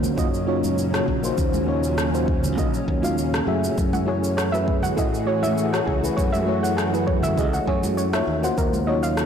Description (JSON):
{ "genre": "sunset chillout", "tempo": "100 BPM", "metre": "4/4", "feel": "swing 53% on 16ths", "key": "unclear", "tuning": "A4 = 439 Hz", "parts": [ { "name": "mellow FM electric piano", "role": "accompaniment", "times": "0.0-9.3 s", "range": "A3 to F5", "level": "-26 LUFS", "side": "moving between left 5 dB and right 5 dB", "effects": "chorus, tremolo, auto-pan, low-pass filter, ping-pong delay" }, { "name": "soft string machine", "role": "sustained chords", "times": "0.0-9.3 s", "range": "Bb2 to Ab4", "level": "-26 LUFS", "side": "equal", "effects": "ensemble chorus" }, { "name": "modern bright fingered electric bass", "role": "bass", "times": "0.0-9.3 s", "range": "Bb1 to A2", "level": "-26 LUFS", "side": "equal", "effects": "none" }, { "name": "electronic cabasa and rim click", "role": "drums", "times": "0.0-9.3 s", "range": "none", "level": "-31 LUFS", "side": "equal", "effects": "soft clipping on snare" }, { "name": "congas", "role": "percussion", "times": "0.0-8.8 s", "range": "none", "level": "-32 LUFS", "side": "right 3 dB", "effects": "none" }, { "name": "electronic kick drum", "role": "drums", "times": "0.2-8.7 s", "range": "none", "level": "-25 LUFS", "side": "equal", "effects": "none" }, { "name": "soft round pluck", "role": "arpeggios", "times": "3.9-9.2 s", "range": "Ab4 to Gb5", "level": "-27 LUFS", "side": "right 1 dB", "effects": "chorus, ping-pong delay" } ], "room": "moderate concert hall reverb, RT60 2.1 s", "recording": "blown-out, overdriven recording, overdrive", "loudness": "-20 LUFS", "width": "side -8 dB against mid", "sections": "0.0-9.3 A section", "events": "none", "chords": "0.0 Ebm9; 3.8 Gbm9; 8.3 Ebm9" }